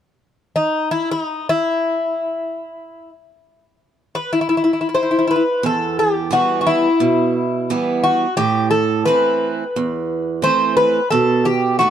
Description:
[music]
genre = greek folk, Greek bouzouki band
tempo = 87 BPM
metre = 4/4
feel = straight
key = E harmonic minor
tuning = A4 = 440 Hz
[part]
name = Greek bouzouki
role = melody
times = 0.6-11.9 s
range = D#4 to C5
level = -17 LUFS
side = left 1 dB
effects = none
[part]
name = picked swing-style acoustic guitar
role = accompaniment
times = 5.6-11.9 s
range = E2 to D#4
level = -20 LUFS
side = right 5 dB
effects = none
[sound]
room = light reverb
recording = dark, warm production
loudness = -16 LUFS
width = side -9 dB against mid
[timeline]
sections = 0.1-5.6 A section; 5.6-11.9 B section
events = none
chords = 0.1 N.C.; 5.6 Em; 8.4 Am; 11.1 B7(no3)

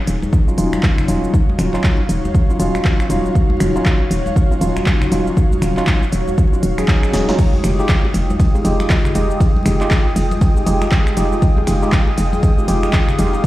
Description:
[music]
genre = deep house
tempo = 119 BPM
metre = 4/4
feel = swing 60% on 16ths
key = unclear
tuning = A4 = 440 Hz
[part]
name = ethereal airy pad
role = texture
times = 0.1-13.5 s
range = Eb4 to G5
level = -24 LUFS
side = equal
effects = ensemble chorus, built-in reverb, sidechain pumping
[part]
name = hollow knocking FM bass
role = bass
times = 0.1-13.4 s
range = Eb1 to F1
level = -19 LUFS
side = equal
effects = sidechain pumping
[part]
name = deep house drum kit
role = drums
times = 0.1-13.5 s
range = cabasa, crash cymbal, finger snaps, handclaps, hi-hat, snare drum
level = -26 LUFS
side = equal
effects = none
[part]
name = congas and bongos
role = percussion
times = 0.2-13.4 s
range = none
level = -26 LUFS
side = left 1 dB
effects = none
[part]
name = electronic kick drum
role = drums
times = 0.3-13.5 s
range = none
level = -14 LUFS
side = equal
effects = none
[part]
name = bright tine electric piano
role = stabs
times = 0.5-13.4 s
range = Gb3 to Ab4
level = -22 LUFS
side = equal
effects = medium stereo tremolo, vintage 12-bit sampler grit, sidechain pumping, tape echo
[part]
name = hollow soft pad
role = sustained chords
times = 7.4-13.5 s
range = Ab3 to Eb6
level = -27 LUFS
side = right 2 dB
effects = chorus, sidechain pumping
[part]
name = breakbeat sampler-style drum kit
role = drums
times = 7.4-13.5 s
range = hi-hat, ride cymbal, snare drum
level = -36 LUFS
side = right 1 dB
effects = sidechain pumping on cymbals, high-pass filter on cymbals, high-pass filter on snare, sidechain pumping on hats, high-pass filter on hats
[sound]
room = light reverb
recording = played on a big sound system in a bare room, large studio reverb, vinyl crackle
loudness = -13 LUFS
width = side -16 dB against mid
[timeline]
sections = 0.0-13.5 A section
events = drum fill 7.1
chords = 0.0 Ebm9; 7.4 Fm9

